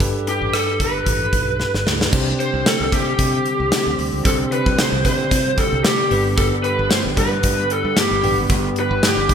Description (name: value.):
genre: 1980s-style pop.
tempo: 113 BPM.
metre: 4/4.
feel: swing 55% on 16ths.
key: unclear.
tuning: A4 = 441 Hz.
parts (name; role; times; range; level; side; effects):
bell-like tine electric piano; accompaniment; 0.0-9.3 s; G2 to C5; -24 LUFS; equal; fast stereo tremolo.
modern bright fingered electric bass; bass; 0.0-9.3 s; G1 to C3; -25 LUFS; equal; none.
gated 80s drum kit; drums; 0.0-9.3 s; crash cymbal, hi-hat, kick drum, rim click, snare drum, tambourine; -20 LUFS; equal; gated reverb.
lead guitar through a small cranked amp; melody; 0.3-9.3 s; G4 to C5; -20 LUFS; equal; overdrive.
warm analog pad; sustained chords; 2.1-9.3 s; D3 to C4; -28 LUFS; right 1 dB; chorus.
room: moderate lush hall reverb, RT60 2.2 s.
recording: bright 1980s-style digital production.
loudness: -16 LUFS.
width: side -7 dB against mid.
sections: 0.0-2.1 A section; 2.1-9.3 B section.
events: drum fill 1.6-2.1.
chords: 0.0 Gadd9; 2.1 Csus2; 6.1 G.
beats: | 0.00 0.54 1.07 1.60 | 2.13 2.66 3.19 3.72 | 4.25 4.78 5.31 5.84 | 6.38 6.91 7.44 7.97 | 8.50 9.03.